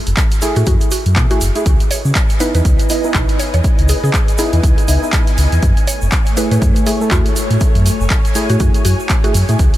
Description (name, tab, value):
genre	deep house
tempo	121 BPM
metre	4/4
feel	swing 58% on 16ths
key	unclear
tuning	A4 = 440 Hz
part	deep mellow chord stab	stabs	0.0-9.6 s	A3 to A4	-21 LUFS	equal	chorus, vintage 12-bit sampler grit, sidechain pumping, diffuse ambient delay
part	sub bass with octave	bass	0.1-9.7 s	F#1 to C#3	-14 LUFS	equal	sidechain pumping
part	punchy analog drum machine	drums	0.1-9.8 s	handclaps, hi-hat	-22 LUFS	right 1 dB	none
part	tube shaker	percussion	0.1-9.8 s	none	-28 LUFS	right 4 dB	none
part	electronic kick drum	drums	0.2-9.7 s	none	-15 LUFS	equal	none
part	mallet-like synth pluck	melody	0.6-9.6 s	F#4 to C#5	-25 LUFS	equal	chorus, cassette tape, diffuse ambient delay
part	soft string machine	sustained chords	1.9-9.8 s	A3 to G#5	-24 LUFS	equal	phaser, ensemble chorus, sidechain pumping
room	light reverb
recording	none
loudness	-12 LUFS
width	side -14 dB against mid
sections	0.0-9.8 A section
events	none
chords	0.0 F#m9; 1.7 C#m9; 5.6 F#m9